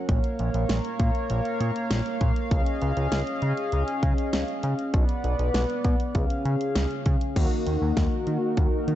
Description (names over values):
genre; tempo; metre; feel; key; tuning
synth-pop; 99 BPM; 4/4; straight; unclear; A4 = 436 Hz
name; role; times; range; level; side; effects
chorused pulse-width pad; sustained chords; 0.0-9.0 s; C#3 to F#5; -29 LUFS; equal; none
fat analog bass; bass; 0.1-9.0 s; A#1 to D#3; -26 LUFS; equal; none
pop drum kit; drums; 0.1-9.0 s; crash cymbal, hi-hat, kick drum, snare drum; -26 LUFS; equal; none
mellow synth brass; accompaniment; 7.4-9.0 s; A#3 to F#4; -27 LUFS; left 2 dB; chorus
room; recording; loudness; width
light reverb; dark, warm production, nothing above 8.0 kHz; -23 LUFS; side -12 dB against mid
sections
0.0-7.4 A section; 7.4-9.0 B section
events
none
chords
0.1 A#m; 2.5 C#add9; 4.9 Bm; 6.2 C#; 7.4 D#m